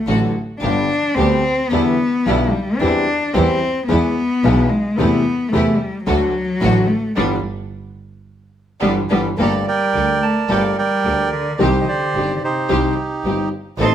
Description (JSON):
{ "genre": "tango", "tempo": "109 BPM", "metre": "4/4", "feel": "rubato", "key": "G major, G minor from 9.4 s", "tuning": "A4 = 440 Hz", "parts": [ { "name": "warm cello", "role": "second line", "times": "0.0-13.9 s", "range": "C3 to D4", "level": "-20 LUFS", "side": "left 2 dB", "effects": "none" }, { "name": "dark upright piano", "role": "accompaniment", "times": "0.1-13.9 s", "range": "G1 to A4", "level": "-20 LUFS", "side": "left 2 dB", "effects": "none" }, { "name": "clear studio string section", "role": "stabs", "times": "0.1-13.9 s", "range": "G3 to A4", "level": "-26 LUFS", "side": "right 2 dB", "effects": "none" }, { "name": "clear double bass", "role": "bass", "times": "0.1-13.9 s", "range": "G1 to E2", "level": "-23 LUFS", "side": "right 2 dB", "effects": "none" }, { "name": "bandoneon", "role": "melody", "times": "9.4-13.9 s", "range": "Eb4 to C6", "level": "-19 LUFS", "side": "right 4 dB", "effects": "none" } ], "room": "moderate stone room reverb, RT60 1.2 s", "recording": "band playing live in one room", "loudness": "-15 LUFS", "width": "side -10 dB against mid", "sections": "0.0-9.4 A section; 9.4-13.9 B section", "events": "cello solo 0.0-9.4; band accent 7.2-9.4", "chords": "0.0 D; 0.6 G; 1.7 Em7; 2.8 C/E; 3.9 E; 5.0 Am/E; 6.1 D; 7.2 G6; 9.4 Gmadd9; 11.6 Cm" }